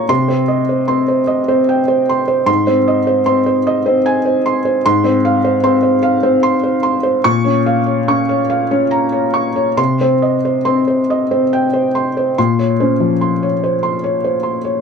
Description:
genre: neoclassical minimalist piano.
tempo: 45-51 BPM (dotted quarters).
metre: 6/8.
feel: rubato.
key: unclear.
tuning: A4 = 439 Hz.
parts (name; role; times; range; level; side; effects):
felt-muted upright piano; solo; 0.0-14.8 s; Ab2 to Db6; -12 LUFS; equal; none.
room: little or no reverb.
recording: close, detailed microphones.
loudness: -12 LUFS.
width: side -6 dB against mid.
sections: 0.0-12.4 A section; 12.4-14.8 B section.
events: none.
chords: 0.1 Cm; 2.5 Ab; 4.8 Fm/Ab; 7.3 Bbm; 9.8 Cm; 12.4 Bbmadd9.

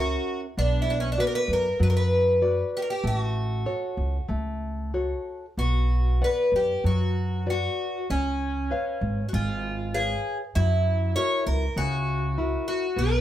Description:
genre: fado-style ballad.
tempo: 97 BPM.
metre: 4/4.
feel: rubato.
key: unclear.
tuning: A4 = 436 Hz.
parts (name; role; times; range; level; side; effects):
picked twelve-string acoustic guitar; melody; 0.0-13.2 s; C#4 to C#5; -26 LUFS; equal; none.
nylon-string guitar; accompaniment; 0.0-13.2 s; C#3 to F#5; -30 LUFS; left 2 dB; none.
upright bass; bass; 0.0-13.2 s; G#1 to F#2; -26 LUFS; equal; none.
room: moderate studio reverb, RT60 0.6 s.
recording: heard from further back in the room.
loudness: -23 LUFS.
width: side -12 dB against mid.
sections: 0.0-13.2 A section.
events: none.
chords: 0.0 F#; 0.6 Bm; 3.0 F#m/A; 5.6 Bm; 8.1 C#7; 10.6 F#7.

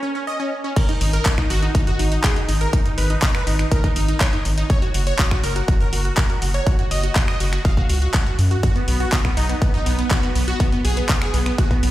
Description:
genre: progressive house.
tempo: 122 BPM.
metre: 4/4.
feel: straight.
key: unclear.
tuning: A4 = 440 Hz.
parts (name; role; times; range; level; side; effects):
wide unison pluck; arpeggios; 0.0-11.9 s; B3 to F#5; -24 LUFS; right 1 dB; phaser, sidechain pumping, tape echo.
deep house drum kit; drums; 0.8-11.9 s; crash cymbal, finger snaps, handclaps, hi-hat; -26 LUFS; equal; high-pass filter on hats, high-pass filter on snare, high-pass filter on cymbals.
electronic kick drum; drums; 0.8-11.8 s; none; -19 LUFS; equal; high-pass filter on kick.
round analog bass; bass; 1.0-11.9 s; F#1 to F#2; -20 LUFS; equal; sidechain pumping.
room: little or no reverb.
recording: played on a big sound system in a bare room, stone room reverb.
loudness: -17 LUFS.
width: side -15 dB against mid.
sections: 0.8-11.9 A section.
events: break 0.0-0.8; drop 0.8-11.9.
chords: 0.0 N.C.; 0.8 G#5; 4.7 F#5; 8.6 B5.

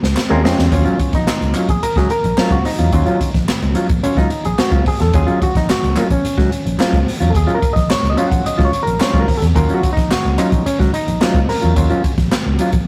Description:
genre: funk.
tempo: 109 BPM.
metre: 4/4.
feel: straight.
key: Eb minor.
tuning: A4 = 440 Hz.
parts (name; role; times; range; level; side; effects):
mellow electric guitar; accompaniment; 0.0-12.8 s; Gb3 to Bb4; -23 LUFS; equal; none.
vintage muted fingered electric bass; bass; 0.0-12.8 s; Bb1 to F2; -20 LUFS; equal; none.
swinging big-band drum kit; drums; 0.0-12.9 s; hi-hat, kick drum, snare drum; -20 LUFS; equal; none.
group handclap; percussion; 0.2-12.4 s; none; -31 LUFS; equal; none.
auto-wah clav; stabs; 0.3-12.1 s; Gb3 to Gb5; -22 LUFS; equal; none.
room: light reverb.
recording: rough rehearsal-room recording, tube saturation.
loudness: -16 LUFS.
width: mono.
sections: 0.7-12.9 A section.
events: drum fill 0.0-0.7; clav solo 0.7-12.9.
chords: 0.0 Bbm7; 0.7 Ebm9.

